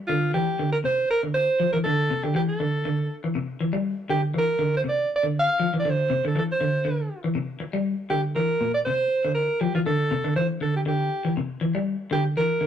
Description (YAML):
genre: afrobeat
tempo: 120 BPM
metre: 4/4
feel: swing 54% on 16ths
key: unclear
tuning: A4 = 440 Hz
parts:
  - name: edgy alto saxophone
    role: melody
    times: 0.1-12.7 s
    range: F4 to F5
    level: -24 LUFS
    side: right 2 dB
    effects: none
  - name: semi-hollow electric guitar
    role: arpeggios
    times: 0.1-12.7 s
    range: Bb2 to G3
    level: -25 LUFS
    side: left 1 dB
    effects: spring reverb
room: moderate studio reverb, RT60 0.6 s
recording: rough rehearsal-room recording, tube saturation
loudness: -22 LUFS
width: side -9 dB against mid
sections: 0.0-12.7 A section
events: none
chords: 0.1 Cadd9; 2.1 Am7; 4.1 Cadd9 (rootless); 6.1 Cadd9; 8.1 Bbadd9(#11); 10.1 Cadd9; 12.1 C9 (rootless)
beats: | 0.09 0.59 1.09 1.59 | 2.09 2.59 3.09 3.59 | 4.10 4.60 5.10 5.60 | 6.10 6.60 7.10 7.60 | 8.11 8.61 9.11 9.61 | 10.11 10.61 11.11 11.61 | 12.11 12.61